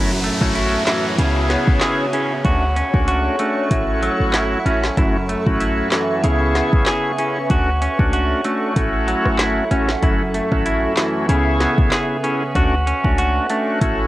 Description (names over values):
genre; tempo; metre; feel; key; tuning
dancehall; 95 BPM; 4/4; swing 56% on 16ths; F# minor; A4 = 440 Hz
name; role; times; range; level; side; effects
bright tonewheel organ; accompaniment; 0.0-14.1 s; A3 to G#4; -21 LUFS; equal; slow rotary speaker, cassette tape
ethereal airy pad; sustained chords; 0.1-14.1 s; A4 to C#6; -26 LUFS; equal; ensemble chorus, built-in reverb, phaser, sidechain pumping, cassette tape
clean electric guitar; arpeggios; 0.0-14.1 s; F#2 to G#4; -22 LUFS; right 1 dB; spring reverb, cassette tape, analog delay
clean 808-style bass; bass; 0.0-14.1 s; F#1 to D2; -21 LUFS; equal; none
downlifter; sound effects; 0.0-5.0 s; none; -28 LUFS; equal; none
afro-pop drum kit; drums; 0.2-14.0 s; handclaps, hi-hat, kick drum, rim click, snare drum; -20 LUFS; equal; cassette tape
room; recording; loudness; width
light reverb; home recording on cassette; -16 LUFS; side -16 dB against mid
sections
0.0-14.1 A section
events
none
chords
0.0 F#m7; 1.2 C#m7; 2.4 Dmaj7; 3.7 A6; 5.0 F#m7; 6.2 C#m7; 7.5 Dmaj7; 8.8 A6; 10.0 F#m7; 11.3 C#m7; 12.6 Dmaj7